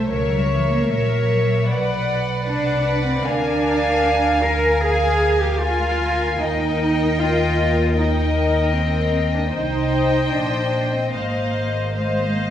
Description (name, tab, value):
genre	classical, slow romantic movement for string orchestra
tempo	76 BPM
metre	4/4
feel	rubato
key	Eb major from 3.3 s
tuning	A4 = 441 Hz
part	rich studio violin section	melody	0.0-12.5 s	E5 to Ab5	-29 LUFS	left 4 dB	none
part	warm studio violin section	second line	0.0-12.5 s	C#5 to F5	-24 LUFS	left 2 dB	none
part	warm studio viola section	accompaniment	0.0-12.5 s	A#4 to C5	-25 LUFS	equal	none
part	warm studio cello section	bass	0.0-12.5 s	E3 to Bb4	-23 LUFS	right 1 dB	none
part	warm studio double bass section	bass	0.0-12.5 s	Ab1 to Eb2	-22 LUFS	equal	none
room	wet recital hall reverb, RT60 1.3 s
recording	heard from further back in the room, vinyl crackle, nothing above 10.9 kHz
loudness	-17 LUFS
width	side -10 dB against mid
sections	0.0-12.5 A section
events	none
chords	0.1 F#7/C#; 1.7 Bm; 3.3 Bb7/D; 6.4 Eb; 9.5 Cm; 11.1 Fm7/Ab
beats	| 0.10 0.90 1.69 2.47 | 3.25 4.05 4.83 5.61 | 6.40 7.19 7.96 8.74 | 9.55 10.34 11.14 11.97